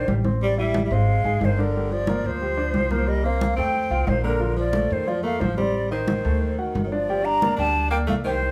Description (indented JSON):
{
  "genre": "Afro-Cuban jazz",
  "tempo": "180 BPM",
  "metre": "4/4",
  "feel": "straight",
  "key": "Bb major",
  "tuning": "A4 = 440 Hz",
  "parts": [
    { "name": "mellow hollow concert flute", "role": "melody", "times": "0.0-8.5 s", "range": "Bb4 to Bb5", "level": "-28 LUFS", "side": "equal", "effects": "none" },
    { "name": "growling tenor saxophone", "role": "second line", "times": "0.0-8.5 s", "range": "D3 to D4", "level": "-31 LUFS", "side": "equal", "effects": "none" },
    { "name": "clear concert grand piano", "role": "accompaniment", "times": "0.0-8.5 s", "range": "F3 to Ab5", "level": "-32 LUFS", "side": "equal", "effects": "none" },
    { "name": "upright bass", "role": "bass", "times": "0.0-8.5 s", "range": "G1 to F2", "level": "-28 LUFS", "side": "equal", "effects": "none" },
    { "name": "congas", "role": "percussion", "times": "0.1-8.5 s", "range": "none", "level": "-31 LUFS", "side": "equal", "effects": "none" }
  ],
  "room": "moderate large studio reverb, RT60 0.9 s",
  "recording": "band playing live in one room",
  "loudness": "-23 LUFS",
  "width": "mono",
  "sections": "0.0-7.1 A section; 7.1-8.5 B section",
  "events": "none",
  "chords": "0.4 Am; 1.1 Ab6; 1.7 Gm7; 3.1 Gm11/C; 3.7 Fadd9; 4.4 Bbmaj9; 5.7 Adim; 6.4 D7b9; 7.1 Gmadd9",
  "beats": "0.09 | 0.42 0.75 1.08 1.42 | 1.75 2.08 2.41 2.75 | 3.08 3.41 3.75 4.08 | 4.41 4.75 5.08 5.42 | 5.75 6.08 6.42 6.75 | 7.08 7.42 7.75 8.08 | 8.42"
}